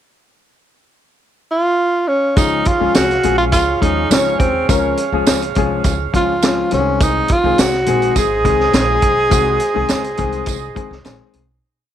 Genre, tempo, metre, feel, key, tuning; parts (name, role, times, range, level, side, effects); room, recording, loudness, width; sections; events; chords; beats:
uptempo 1960s-style soul; 104 BPM; 4/4; straight; Db major; A4 = 441 Hz
breathy tenor saxophone; melody; 1.5-11.0 s; C4 to Ab4; -16 LUFS; right 1 dB
clear horn section; second line; 2.4-11.0 s; Ab4 to F5; -24 LUFS; right 13 dB; tape echo
warm concert grand piano; accompaniment; 2.4-11.4 s; Eb3 to Bb4; -21 LUFS; left 12 dB
upright bass; bass; 2.4-11.6 s; Ab1 to Eb2; -23 LUFS; right 1 dB
vintage drum kit; drums; 2.4-11.5 s; hi-hat, kick drum, snare drum; -18 LUFS; right 1 dB
tambourine; percussion; 2.4-11.2 s; -26 LUFS; right 17 dB
light reverb, small room ambience; 1960s-style stereo with parts hard left and right; -13 LUFS; side -10 dB against mid
0.0-2.4 pickup bar; 2.4-11.6 verse
fade-out 9.3-11.6
0.0 N.C.; 2.4 Db; 6.7 Ab
| 0.04 0.62 1.20 1.78 | 2.37 2.95 3.53 4.11 | 4.69 5.27 5.85 6.43 | 7.00 7.58 8.16 8.74 | 9.32 9.90 10.47 11.05